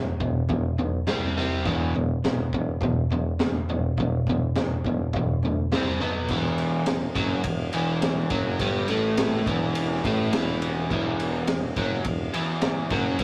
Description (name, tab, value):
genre	garage rock duo or trio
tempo	104 BPM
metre	4/4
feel	straight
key	E minor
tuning	A4 = 438 Hz
part	overdriven electric guitar	riff	0.0-13.2 s	E2 to C4	-29 LUFS	equal	none
part	warm tuba	bass	0.0-13.2 s	E1 to D2	-32 LUFS	equal	tube saturation
part	crunchy breakbeat drum kit	drums	0.2-13.2 s	crash cymbal, kick drum, ride cymbal, snare drum, toms	-30 LUFS	equal	none
room	moderate small room reverb, RT60 0.5 s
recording	rough rehearsal-room recording, tube saturation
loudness	-25 LUFS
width	mono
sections	0.0-6.3 A section; 6.3-13.2 B section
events	none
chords	0.0 E5; 1.1 C5; 1.7 E5; 5.7 C5; 6.0 B5; 6.3 N.C.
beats	0.50 1.08 | 1.66 2.24 2.82 3.40 | 3.98 4.56 5.14 5.72 | 6.30 6.87 7.45 8.03 | 8.60 9.18 9.75 10.32 | 10.90 11.47 12.05 12.62 | 13.19